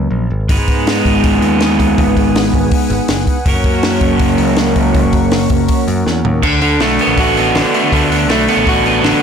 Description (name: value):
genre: indie rock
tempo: 162 BPM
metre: 4/4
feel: straight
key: unclear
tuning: A4 = 440 Hz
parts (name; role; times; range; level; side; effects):
- crunchy overdriven guitar; riff; 0.0-9.2 s; D3 to B4; -13 LUFS; right 1 dB; none
- modern bright picked electric bass; bass; 0.0-9.2 s; F#1 to D3; -18 LUFS; equal; none
- brassy analog pad; sustained chords; 0.5-9.2 s; A4 to D#6; -23 LUFS; equal; chorus
- compact cocktail drum kit; drums; 0.5-9.1 s; crash cymbal, hi-hat, kick drum, snare drum, toms; -16 LUFS; equal; soft clipping on snare
room: light reverb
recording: blown-out, overdriven recording, overdrive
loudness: -10 LUFS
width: side -7 dB against mid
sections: 0.0-6.4 A section; 6.4-9.2 B section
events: drum fill 6.1-6.4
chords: 0.5 G#m7; 3.5 F#; 6.4 D6